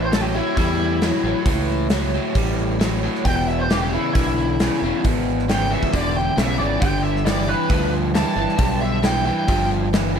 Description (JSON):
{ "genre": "classic rock", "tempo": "135 BPM", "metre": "4/4", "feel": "straight", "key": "A major", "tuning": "A4 = 440 Hz", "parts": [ { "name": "bluesy overdriven lead guitar", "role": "melody", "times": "0.0-9.7 s", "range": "E4 to A5", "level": "-24 LUFS", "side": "left 1 dB", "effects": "wah, distortion, tape echo" }, { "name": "overdriven electric guitar", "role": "riff", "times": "0.0-10.2 s", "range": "E2 to G3", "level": "-25 LUFS", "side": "left 14 dB", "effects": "none" }, { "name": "overdriven semi-hollow guitar", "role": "riff", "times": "0.0-10.2 s", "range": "E2 to G3", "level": "-25 LUFS", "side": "right 18 dB", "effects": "none" }, { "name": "growling fingered electric bass", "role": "bass", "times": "0.0-10.2 s", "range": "E1 to E2", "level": "-24 LUFS", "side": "equal", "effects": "overdrive" }, { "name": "gated 80s drum kit", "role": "drums", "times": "0.1-10.0 s", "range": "hi-hat, kick drum, snare drum", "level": "-22 LUFS", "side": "equal", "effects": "none" } ], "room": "little or no reverb", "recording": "none", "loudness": "-18 LUFS", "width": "side -7 dB against mid", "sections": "0.0-10.2 A section", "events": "lead electric guitar solo 0.0-10.2", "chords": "0.0 A; 3.3 E; 6.8 G" }